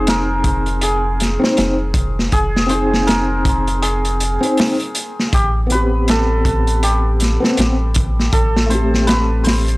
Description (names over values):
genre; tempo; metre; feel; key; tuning
trip hop; 80 BPM; 4/4; swing 59% on 16ths; unclear; A4 = 445 Hz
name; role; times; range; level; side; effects
santur; melody; 0.0-9.8 s; G4 to C5; -21 LUFS; equal; vintage 12-bit sampler grit, tape echo
felt-muted upright piano; accompaniment; 0.0-9.8 s; A3 to C5; -20 LUFS; left 1 dB; tremolo
soft dub sub bass; bass; 0.0-9.8 s; F1 to A1; -18 LUFS; equal; none
crunchy breakbeat drum kit; drums; 0.1-9.8 s; hi-hat, kick drum, snare drum; -18 LUFS; equal; none
room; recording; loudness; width
small room ambience; dry, gritty hardware recording, transformer saturation; -14 LUFS; side -21 dB against mid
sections
0.0-9.8 A section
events
none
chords
0.0 Fm7; 5.3 Am7